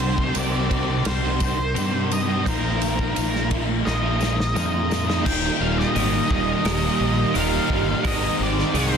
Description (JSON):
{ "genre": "rock, shoegaze and dream pop", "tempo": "86 BPM", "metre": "4/4", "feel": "straight", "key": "Eb major", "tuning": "A4 = 437 Hz", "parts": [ { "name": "octave-fuzz lead guitar", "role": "melody", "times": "0.0-9.0 s", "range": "Bb4 to G5", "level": "-27 LUFS", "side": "equal", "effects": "distortion, analog delay" }, { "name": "ethereal airy pad", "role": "sustained chords", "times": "0.3-9.0 s", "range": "Eb4 to C6", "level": "-33 LUFS", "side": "right 2 dB", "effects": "ensemble chorus, built-in reverb, phaser" }, { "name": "twelve-string electric guitar", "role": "arpeggios", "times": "0.0-9.0 s", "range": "G4 to C5", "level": "-36 LUFS", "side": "right 11 dB", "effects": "wide subtle chorus, analog delay" }, { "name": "overdriven electric guitar", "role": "riff", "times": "0.0-9.0 s", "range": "Eb2 to G4", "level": "-27 LUFS", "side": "left 12 dB", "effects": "wide subtle chorus" }, { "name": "overdriven semi-hollow guitar", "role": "riff", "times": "0.0-9.0 s", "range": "Eb2 to G4", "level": "-27 LUFS", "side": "right 11 dB", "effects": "reverse reverb" }, { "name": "growling fingered electric bass", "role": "bass", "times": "0.0-9.0 s", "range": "Eb1 to G2", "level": "-25 LUFS", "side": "equal", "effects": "overdrive" }, { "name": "loose indie drum kit", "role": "drums", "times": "0.0-8.9 s", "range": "crash cymbal, hi-hat, kick drum, ride cymbal, snare drum", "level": "-28 LUFS", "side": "equal", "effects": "none" }, { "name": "tambourine", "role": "percussion", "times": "0.4-5.1 s", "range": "none", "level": "-38 LUFS", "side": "left 16 dB", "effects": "none" }, { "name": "cranked stack guitar", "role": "riff", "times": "5.2-9.0 s", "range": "Eb2 to Ab3", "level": "-27 LUFS", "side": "left 1 dB", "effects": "overdrive" } ], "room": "studio reverb", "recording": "dense, heavily limited modern master, lossy compression artefacts", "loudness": "-19 LUFS", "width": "side -7 dB against mid", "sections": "0.0-5.3 A section; 5.3-9.0 B section", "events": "drum fill 3.9-5.3", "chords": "0.0 Cm7; 2.5 Bb7sus4; 5.3 Eb6; 8.0 Ab" }